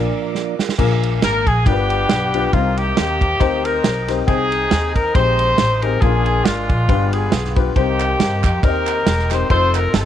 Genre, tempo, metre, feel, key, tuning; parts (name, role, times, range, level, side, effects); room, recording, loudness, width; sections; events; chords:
uptempo gospel; 138 BPM; 4/4; swing 56% on 8ths; A4 = 440 Hz
warm upright piano; accompaniment; 0.0-10.1 s; G2 to G5; -22 LUFS; left 12 dB
mellow tonewheel organ; sustained chords; 0.0-10.1 s; F3 to Eb6; -30 LUFS; right 12 dB; slow rotary speaker
warm studio string section; sustained chords; 0.0-0.8 s; D5 to D6; -37 LUFS; left 2 dB
upright bass; bass; 0.0-10.1 s; Fb1 to G2; -20 LUFS; equal; tube saturation
warm soul drum kit; drums; 0.3-10.1 s; crash cymbal, kick drum, ride cymbal, snare drum; -20 LUFS; right 2 dB
clear horn section; melody; 1.2-10.1 s; Ab3 to C5; -19 LUFS; left 1 dB
group handclap; percussion; 8.0-9.8 s; -29 LUFS; right 14 dB
small room ambience; 1960s-style stereo with parts hard left and right; -15 LUFS; side -10 dB against mid
0.8-10.1 A section
band accent 0.0-0.8; drum fill 0.3-0.8
0.0 Bb; 0.8 Bb7; 1.7 G7; 2.5 Cm7; 4.3 Abmaj7/C; 6.0 Bb7; 6.9 G7; 7.8 Cm7; 9.5 F7